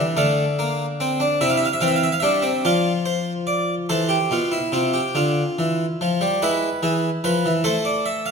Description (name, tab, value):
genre	classical, baroque-style 3-part fugue for harpsichord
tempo	48 BPM (dotted quarters)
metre	6/8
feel	straight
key	F major, A minor from 3.9 s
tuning	A4 = 438 Hz
part	harpsichord	solo	0.0-8.3 s	B2 to F5	-18 LUFS	equal	none
room	wet recital hall reverb, RT60 1.4 s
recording	none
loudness	-18 LUFS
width	side -5 dB against mid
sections	0.0-3.9 A section; 3.9-8.3 B section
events	none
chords	0.2 Bb/D; 1.4 C; 2.6 F5; 3.9 Am; 5.2 Dm; 6.4 E; 7.7 Am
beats	0.18 | 1.42 2.64 | 3.89 5.15 | 6.41 7.66